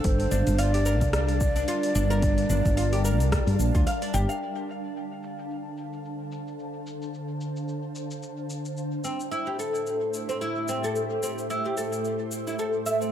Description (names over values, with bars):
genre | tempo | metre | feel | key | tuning
organic downtempo | 110 BPM | 4/4 | swing 56% on 16ths | D minor | A4 = 441 Hz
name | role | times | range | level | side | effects
breathy mellow ney | melody | 0.0-3.8 s | C5 to D5 | -31 LUFS | equal | vintage 12-bit sampler grit, dub echo
ethereal airy pad | sustained chords | 0.0-13.1 s | A2 to A5 | -32 LUFS | equal | ensemble chorus, built-in reverb, sidechain pumping
oud | arpeggios | 0.0-4.4, 9.0-13.1 s | C4 to F5 | -29 LUFS | equal | dub echo
woody fretless electric bass | bass | 0.0-4.2 s | G1 to G2 | -24 LUFS | equal | none
deep house drum kit | drums | 0.0-13.1 s | hi-hat, rim click, shaker | -36 LUFS | left 1 dB | overdrive, low-pass filter on hats, low-pass filter on perc, low-pass filter on snare, low-pass filter on room
electronic kick drum | drums | 0.0-3.8 s | none | -26 LUFS | equal | overdrive
room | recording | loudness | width
light reverb, digital ambience | echo-heavy mix | -24 LUFS | side -10 dB against mid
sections
0.0-4.4 A section; 4.4-13.1 B section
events
filter sweep on ambient pad 4.4-13.1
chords
0.0 Gm7; 4.4 Dm7; 8.8 Am7